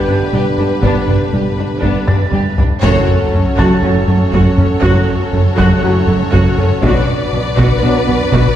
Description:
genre	cinematic, hybrid orchestral and electronic film score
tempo	120 BPM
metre	4/4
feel	straight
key	F# phrygian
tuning	A4 = 440 Hz
part	clear symphonic violin section	melody	0.0-8.6 s	B4 to D5	-24 LUFS	left 5 dB	none
part	rich symphonic violin section	second line	0.0-8.6 s	B3 to B4	-24 LUFS	left 2 dB	none
part	clear symphonic viola section	accompaniment	0.0-8.6 s	A3 to F#4	-22 LUFS	equal	none
part	brassy analog pad	sustained chords	0.0-8.6 s	D3 to B4	-21 LUFS	right 1 dB	chorus
part	mellow French horn section	sustained chords	0.0-8.0 s	C#4 to G4	-24 LUFS	left 1 dB	none
part	warm trombone section	sustained chords	0.0-8.0 s	G2 to B3	-26 LUFS	right 1 dB	none
part	felt-muted upright piano	texture	0.0-8.6 s	A5 to A6	-27 LUFS	left 1 dB	tape echo
part	rubbery square bass	riff	0.1-8.5 s	F#2 to B3	-17 LUFS	right 1 dB	none
part	rich studio cello section	bass	0.1-8.4 s	F#2 to B2	-19 LUFS	right 1 dB	none
part	rich symphonic double bass section	bass	0.1-8.4 s	F#1 to B1	-20 LUFS	right 1 dB	none
part	taiko ensemble	drums	0.3-8.6 s	none	-19 LUFS	left 1 dB	none
part	sub drop	sound effects	2.8-4.8 s	none	-22 LUFS	left 1 dB	none
room	wet concert hall reverb, RT60 2.0 s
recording	heard from further back in the room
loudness	-11 LUFS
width	side -11 dB against mid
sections	0.0-2.8 A section; 2.8-8.6 B section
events	drum fill 2.1-2.8; band accent 2.8-3.3; impact 2.8-4.8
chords	0.0 G; 2.8 F#m; 6.8 Bm

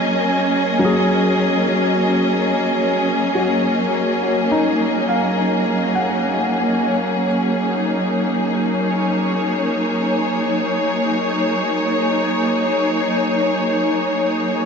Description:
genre	ambient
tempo	free time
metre	none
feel	none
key	Eb minor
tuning	A4 = 441 Hz
part	clear symphonic string section	sustained chords	0.0-14.7 s	Gb3 to Eb5	-17 LUFS	equal	none
part	wind-like tuned noise texture	texture	0.0-6.9 s	Ab5	-28 LUFS	right 3 dB	built-in reverb
part	felt-muted upright piano	arpeggios	0.8-8.7 s	Gb3 to Gb5	-22 LUFS	left 1 dB	diffuse ambient delay
room	wet huge ambient reverb, RT60 8.4 s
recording	cassette tape, nothing above 7.8 kHz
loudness	-16 LUFS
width	side -6 dB against mid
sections	0.0-6.9 A section; 6.9-14.7 B section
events	none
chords	0.0 Ebm7

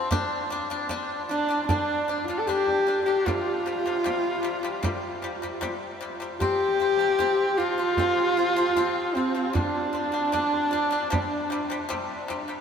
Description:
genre	mongolian traditional, Mongolian folk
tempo	76 BPM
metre	4/4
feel	straight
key	unclear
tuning	A4 = 440 Hz
part	pipa	arpeggios	0.0-12.6 s	C3 to D4	-30 LUFS	left 2 dB	none
part	frame drum	percussion	0.1-12.4 s	none	-32 LUFS	right 1 dB	none
part	rich horsehead fiddle	melody	1.3-11.9 s	C4 to A4	-24 LUFS	equal	none
room	wet huge ambient reverb, RT60 7.7 s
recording	heard from further back in the room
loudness	-23 LUFS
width	side -7 dB against mid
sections	0.0-6.4 A section; 6.4-12.6 B section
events	none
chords	0.1 G5; 3.3 C5; 6.4 F5; 9.5 G5; 11.1 C5

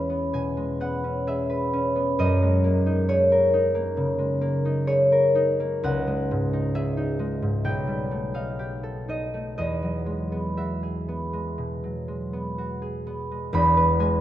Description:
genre	classical, solo harp piece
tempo	59-68 BPM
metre	4/4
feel	rubato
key	E lydian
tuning	A4 = 440 Hz
part	concert harp	solo	0.0-14.2 s	E1 to B5	-22 LUFS	equal	none
room	moderate concert hall reverb, RT60 2.3 s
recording	dark, warm production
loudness	-22 LUFS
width	side -12 dB against mid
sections	0.0-13.5 A section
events	none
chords	0.0 C#m7/E; 2.2 F#13; 5.8 C#madd9; 7.7 Baug7; 9.6 Eadd9; 13.5 E

